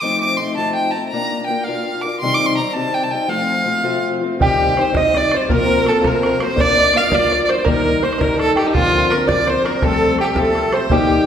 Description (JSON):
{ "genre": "celtic folk, Celtic jig", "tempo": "110 BPM (dotted quarters)", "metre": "6/8", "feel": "straight", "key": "F mixolydian", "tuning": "A4 = 442 Hz", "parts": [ { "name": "rich fiddle", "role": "melody", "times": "0.0-11.3 s", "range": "Eb4 to D6", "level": "-18 LUFS", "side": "right 1 dB", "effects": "none" }, { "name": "fingerpicked steel-string acoustic guitar", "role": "accompaniment", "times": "0.0-11.3 s", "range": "F2 to Bb4", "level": "-20 LUFS", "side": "left 3 dB", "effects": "none" }, { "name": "musette accordion", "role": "second line", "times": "4.4-11.2 s", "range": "F4 to Eb5", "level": "-23 LUFS", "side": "left 1 dB", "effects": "none" }, { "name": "open-back banjo", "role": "second line", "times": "4.4-11.3 s", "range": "F4 to F5", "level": "-23 LUFS", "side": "right 5 dB", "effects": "none" }, { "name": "bodhran", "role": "percussion", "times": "4.4-11.1 s", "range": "none", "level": "-22 LUFS", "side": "right 1 dB", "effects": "none" } ], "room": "wet recital hall reverb, RT60 1.8 s", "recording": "recorded in a church or concert hall", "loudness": "-14 LUFS", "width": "side -8 dB against mid", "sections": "0.0-4.4 A section; 4.4-11.3 B section", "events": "none", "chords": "0.0 F7; 1.1 Bb; 2.2 Cm; 3.3 F; 4.4 Cm; 5.5 Fsus4; 6.6 Bb; 7.7 Eb; 8.7 Bbadd9; 9.8 Fadd9" }